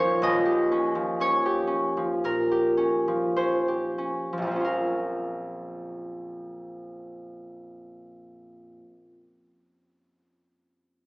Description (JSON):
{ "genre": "classical, solo harp piece", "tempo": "46-64 BPM", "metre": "4/4", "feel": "rubato", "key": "Bb minor", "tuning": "A4 = 440 Hz", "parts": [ { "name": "concert harp", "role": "solo", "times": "0.0-9.0 s", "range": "Eb1 to Gb5", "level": "-24 LUFS", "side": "equal", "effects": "none" } ], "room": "wet recital hall reverb, RT60 1.5 s", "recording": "recorded in a church or concert hall, small speaker sound", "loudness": "-23 LUFS", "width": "side -26 dB against mid", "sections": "0.0-4.6 A section; 4.6-9.7 B section", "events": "slowing down 0.0-4.6", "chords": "0.2 Eb9; 4.6 Bbm" }